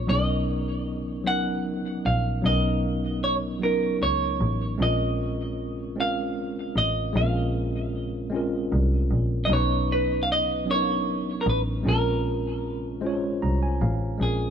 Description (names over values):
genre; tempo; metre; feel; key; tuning
slow six-eight R&B; 51 BPM (dotted quarters); 6/8; straight; Bb phrygian; A4 = 440 Hz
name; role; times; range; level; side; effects
semi-hollow electric guitar; melody; 0.0-14.5 s; Ab4 to F#5; -27 LUFS; right 2 dB; tape echo
tine electric piano; accompaniment; 0.0-14.5 s; F#3 to Bb5; -28 LUFS; equal; overdrive, fast stereo tremolo
clear double bass; bass; 0.0-14.5 s; A1 to Db2; -26 LUFS; equal; none
room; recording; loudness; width
little or no reverb; none; -23 LUFS; side -8 dB against mid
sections
0.0-14.2 A section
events
tine electric piano fill 13.0-14.2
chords
0.1 Bmaj7; 4.8 Bbm9; 9.5 Bmaj7; 11.8 Bbm9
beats
| 0.08 1.26 | 2.43 3.61 | 4.79 5.96 | 7.14 8.32 | 9.49 10.67 | 11.85 13.02 | 14.20